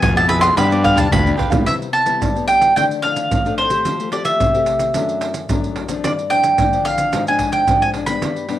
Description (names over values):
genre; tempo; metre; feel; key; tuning
samba and choro; 110 BPM; 4/4; straight; C major; A4 = 440 Hz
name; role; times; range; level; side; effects
mandolin; melody; 0.0-8.6 s; C5 to C6; -16 LUFS; right 1 dB; plate reverb
nylon-string guitar; accompaniment; 0.0-8.6 s; F#2 to G#4; -23 LUFS; left 7 dB; cassette tape
fuzz fingered electric bass; bass; 0.0-1.3 s; D2 to G2; -19 LUFS; left 1 dB; overdrive
maracas, surdo, pandeiro and tamborim; percussion; 0.0-8.6 s; none; -21 LUFS; right 2 dB; none
cavaquinho; accompaniment; 0.2-1.6 s; D4 to F5; -22 LUFS; right 4 dB; cassette tape, plate reverb
room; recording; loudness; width
moderate studio reverb, RT60 0.5 s; home recording on cassette; -14 LUFS; side -13 dB against mid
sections
0.0-1.7 A section; 1.7-8.6 B section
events
mandolin solo 0.0-1.7; drum fill 0.8-1.7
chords
0.0 E; 0.6 G7; 1.7 Cmaj7; 2.8 Dm; 3.9 Fadd9; 4.9 D/F#; 6.0 G7sus4; 7.1 Fm6/Ab